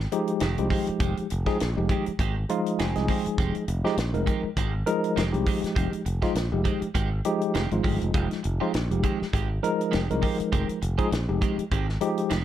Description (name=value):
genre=electric jazz fusion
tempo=101 BPM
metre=4/4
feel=swing 55% on 16ths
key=F minor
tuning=A4 = 441 Hz
part: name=clean electric guitar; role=stabs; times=0.0-12.4 s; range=Eb3 to G4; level=-34 LUFS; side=right 9 dB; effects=lush chorus
part: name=modern bright fingered electric bass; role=bass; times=0.0-12.4 s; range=F1 to C2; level=-28 LUFS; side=equal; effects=none
part: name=tight funk drum kit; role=drums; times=0.0-12.4 s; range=hi-hat, kick drum, snare drum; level=-29 LUFS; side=equal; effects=none
part: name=bright tine electric piano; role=accompaniment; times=0.1-12.4 s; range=F3 to Ab5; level=-26 LUFS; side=left 1 dB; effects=medium stereo tremolo
room=light reverb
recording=dark, warm production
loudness=-23 LUFS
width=side -11 dB against mid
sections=0.0-12.4 A section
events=tine electric piano fill 2.2-3.4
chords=0.0 Fm9